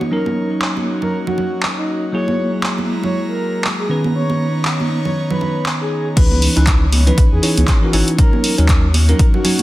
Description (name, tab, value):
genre	deep house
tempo	119 BPM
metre	4/4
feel	swing 58% on 16ths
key	C# dorian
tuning	A4 = 440 Hz
part	breathy flute-like synth lead	melody	0.0-9.6 s	D#4 to C#5	-24 LUFS	left 1 dB	chorus, tremolo, digital delay
part	airy breathy pad	sustained chords	0.0-9.6 s	E3 to A#5	-28 LUFS	equal	chorus, sidechain pumping
part	bell-like tine electric piano	stabs	0.0-9.6 s	D#3 to C#5	-20 LUFS	equal	sidechain pumping, low-pass filter, digital delay
part	congas	percussion	0.0-9.6 s	none	-23 LUFS	right 3 dB	none
part	punchy analog drum machine	drums	0.6-9.6 s	crash cymbal, handclaps, hi-hat	-21 LUFS	equal	low-pass filter on hats, low-pass filter on snare, low-pass filter on cymbals
part	warm sub bass	bass	6.2-9.1 s	G#1 to E2	-14 LUFS	equal	sidechain pumping
part	electronic kick drum	drums	6.2-9.3 s	none	-13 LUFS	equal	none
room	light reverb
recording	dense, heavily limited modern master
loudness	-14 LUFS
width	side -16 dB against mid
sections	0.0-6.2 A section; 6.2-9.6 B section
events	drop 6.2-9.6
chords	0.1 D#m7; 2.1 F#9; 3.9 Bmaj9; 6.2 C#m9; 8.2 D#m7